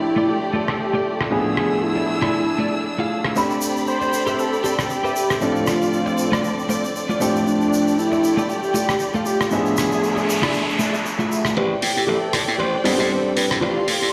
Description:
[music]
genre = nu-disco, nu disco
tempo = 117 BPM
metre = 4/4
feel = swing 56% on 16ths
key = A minor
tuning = A4 = 439 Hz
[part]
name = unison lead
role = melody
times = 0.0-14.1 s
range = D4 to C5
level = -26 LUFS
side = equal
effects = tape echo
[part]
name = clear baby grand piano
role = accompaniment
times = 0.0-13.6 s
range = A2 to B5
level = -26 LUFS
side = equal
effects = low-pass filter, slapback echo
[part]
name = warm symphonic violin section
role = sustained chords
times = 0.0-14.1 s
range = A3 to E6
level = -29 LUFS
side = equal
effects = none
[part]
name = direct-recorded clean electric guitar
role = riff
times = 0.0-13.9 s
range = A3 to F5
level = -27 LUFS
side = equal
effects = analog chorus, low-pass filter, slapback echo
[part]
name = damped 70s drum kit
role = drums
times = 0.7-14.0 s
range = hi-hat, rim click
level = -28 LUFS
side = equal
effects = low-pass filter on hats, small room ambience, low-pass filter on snare, low-pass filter on room
[part]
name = tube shaker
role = percussion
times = 3.4-11.5 s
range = none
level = -35 LUFS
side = equal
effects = none
[part]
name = noise sweep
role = sound effects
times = 10.0-11.6 s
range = none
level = -30 LUFS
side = equal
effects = none
[part]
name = glassy slap bass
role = bass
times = 11.6-14.1 s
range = A1 to A2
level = -25 LUFS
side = equal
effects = tube saturation, high-pass filter
[sound]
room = moderate echo chamber reverb, RT60 1.4 s, small room ambience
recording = played on a big sound system in a bare room, large studio reverb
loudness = -20 LUFS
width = mono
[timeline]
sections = 0.0-11.6 A section; 11.6-14.1 B section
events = noise sweep 10.0-11.6; build-up 11.6-14.1; filter sweep on clean electric guitar 11.6-14.1; filter sweep on analog synth lead 11.6-14.1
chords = 0.0 F69/A; 1.3 E7b9/A; 3.4 Am11; 5.4 Dm7/A; 7.2 F69/A; 9.5 E7b9/A; 11.6 Am11; 13.6 Dm7/A

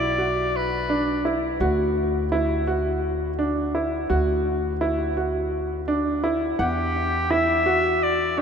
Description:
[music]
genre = contemporary instrumental, chamber music in an uneven meter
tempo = 168 BPM (eighths)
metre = 7/8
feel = straight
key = D major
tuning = A4 = 440 Hz
[part]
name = clear oboe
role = melody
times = 0.0-1.4, 6.6-8.4 s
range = G4 to E5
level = -25 LUFS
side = left 2 dB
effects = none
[part]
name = bright baby grand piano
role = arpeggios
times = 0.0-8.4 s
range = D4 to F#5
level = -23 LUFS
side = right 1 dB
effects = none
[part]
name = upright bass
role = bass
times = 0.0-8.4 s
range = B1 to E2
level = -28 LUFS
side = equal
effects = none
[sound]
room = wet cathedral reverb, RT60 6.4 s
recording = in a vast, echoing space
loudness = -21 LUFS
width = side -7 dB against mid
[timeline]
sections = 0.0-8.4 A section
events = none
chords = 0.0 Bm; 1.6 D; 6.6 Emadd9

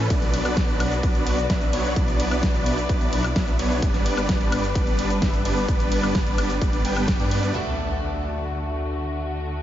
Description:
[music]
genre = EDM, festival progressive house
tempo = 129 BPM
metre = 4/4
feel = straight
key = D major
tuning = A4 = 441 Hz
[part]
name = muted studio string section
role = sustained chords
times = 0.0-9.6 s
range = D3 to D5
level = -30 LUFS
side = left 2 dB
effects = sidechain pumping
[part]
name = supersaw chords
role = riff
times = 0.0-7.5 s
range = F#3 to G5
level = -26 LUFS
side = right 1 dB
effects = sidechain pumping, diffuse ambient delay
[part]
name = detuned saw bass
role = bass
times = 0.0-9.6 s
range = G1 to G2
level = -28 LUFS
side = equal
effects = sidechain pumping
[part]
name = big-room dance drum kit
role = drums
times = 0.1-8.3 s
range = cabasa, crash cymbal, hi-hat, ride cymbal, snare drum, woodblock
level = -30 LUFS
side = equal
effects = low-pass filter on hats, low-pass filter on perc, low-pass filter on snare, low-pass filter on cymbals
[part]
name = electronic kick drum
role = drums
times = 0.1-7.2 s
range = none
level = -23 LUFS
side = equal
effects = none
[part]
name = picked swing-style acoustic guitar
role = accompaniment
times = 7.5-9.6 s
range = A3 to A4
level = -32 LUFS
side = equal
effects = wide subtle chorus, sidechain pumping, diffuse ambient delay
[part]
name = impact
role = sound effects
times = 7.5-9.4 s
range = none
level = -34 LUFS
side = equal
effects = none
[sound]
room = light reverb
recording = nothing above 7.5 kHz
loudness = -20 LUFS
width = side -12 dB against mid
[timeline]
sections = 0.0-7.5 A section; 7.5-9.6 B section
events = drop 0.0-7.5; band accent 7.1; impact 7.5-9.4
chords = 0.1 Bm; 3.8 G; 7.5 D

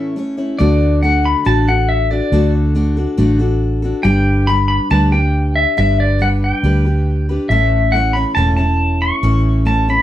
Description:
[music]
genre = honky-tonk and classic country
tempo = 139 BPM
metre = 4/4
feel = straight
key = unclear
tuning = A4 = 440 Hz
[part]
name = pedal steel guitar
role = melody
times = 0.0-10.0 s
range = D5 to C#6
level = -18 LUFS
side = left 1 dB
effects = none
[part]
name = picked steel-string acoustic guitar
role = accompaniment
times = 0.0-10.0 s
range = A2 to C#5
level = -18 LUFS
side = left 1 dB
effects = none
[part]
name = vintage muted fingered electric bass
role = bass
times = 0.6-10.0 s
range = E1 to D2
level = -15 LUFS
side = equal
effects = none
[sound]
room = moderate studio ambience, RT60 0.4 s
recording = dark, warm production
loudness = -12 LUFS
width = side -13 dB against mid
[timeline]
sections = 0.6-10.0 A section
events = break 0.0-0.6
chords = 0.0 A; 0.6 D; 4.1 G; 7.5 A

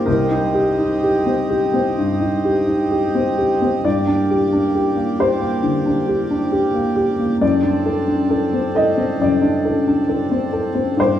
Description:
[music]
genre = neoclassical piano and strings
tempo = 62-68 BPM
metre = 4/4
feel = rubato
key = G harmonic minor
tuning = A4 = 440 Hz
[part]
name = dark upright piano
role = accompaniment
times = 0.0-11.2 s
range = C2 to Eb5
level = -16 LUFS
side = left 1 dB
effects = none
[part]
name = pedal harmonium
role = sustained chords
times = 0.0-11.2 s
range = Bb3 to Eb5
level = -24 LUFS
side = right 4 dB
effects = none
[sound]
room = moderate scoring stage reverb, RT60 1.6 s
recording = small room ambience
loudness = -16 LUFS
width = side -10 dB against mid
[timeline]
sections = 0.0-3.8 A section; 3.8-11.2 A section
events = none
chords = 0.1 Cm7; 3.8 Gm; 7.4 D7/F#

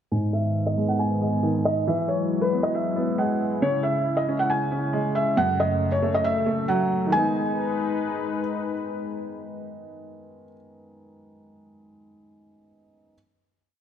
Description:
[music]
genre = hip hop, trap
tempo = 137 BPM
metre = 4/4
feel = half-time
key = G# phrygian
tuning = A4 = 444 Hz
[part]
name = felt-muted upright piano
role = melody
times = 0.1-8.4 s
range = B4 to G#5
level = -25 LUFS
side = equal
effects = low-pass filter
[part]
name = dark grand piano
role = accompaniment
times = 0.1-13.1 s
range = F#2 to D#4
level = -26 LUFS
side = right 1 dB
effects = low-pass filter
[part]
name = warm analog pad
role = sustained chords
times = 0.1-10.5 s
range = F#2 to B4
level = -28 LUFS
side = left 2 dB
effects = chorus, low-pass filter
[sound]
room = light reverb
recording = none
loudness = -22 LUFS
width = side -9 dB against mid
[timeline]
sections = 0.1-7.1 breakdown; 7.1-10.6 final chord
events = filter sweep 0.1-7.1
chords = 0.1 G#m; 1.9 Eadd9; 3.6 C#m; 5.4 F#m; 7.1 G#m

